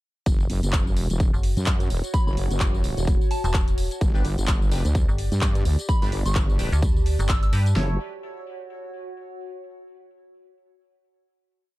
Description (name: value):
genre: bass house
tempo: 128 BPM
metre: 4/4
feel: swing 57% on 16ths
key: F# phrygian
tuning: A4 = 440 Hz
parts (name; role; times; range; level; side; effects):
- wobble bass; bass; 0.3-8.0 s; E1 to G2; -24 LUFS; equal; chorus, tube saturation, sidechain pumping
- big-room dance drum kit; drums; 0.3-7.9 s; kick drum, snare drum; -22 LUFS; equal; overdrive
- big-room dance drum kit; drums; 0.3-7.7 s; handclaps, hi-hat, tambourine; -32 LUFS; equal; overdrive
- warbly tape-like pad; texture; 1.0-9.6 s; F#4 to A5; -35 LUFS; equal; chorus, built-in reverb, phaser, sidechain pumping
- metallic FM bass; bass; 1.3-7.7 s; E1 to G2; -22 LUFS; equal; tube saturation, sidechain pumping
- soft synth bell; melody; 2.1-7.5 s; A5 to E6; -35 LUFS; right 1 dB; chorus, digital delay
- band-passed chord stab; stabs; 4.1-7.9 s; D4 to C#5; -37 LUFS; left 1 dB; phaser, sidechain pumping, digital delay
room: little or no reverb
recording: dark, warm production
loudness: -20 LUFS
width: side -18 dB against mid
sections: 0.3-7.8 drop; 7.8-9.6 final chord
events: drop 0.3-7.8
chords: 0.3 F#5; 4.0 G; 7.8 F#m7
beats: | 0.26 0.73 1.20 1.67 | 2.14 2.61 3.08 3.54 | 4.01 4.48 4.95 5.42 | 5.89 6.36 6.83 7.29 | 7.76 8.23 8.70 9.17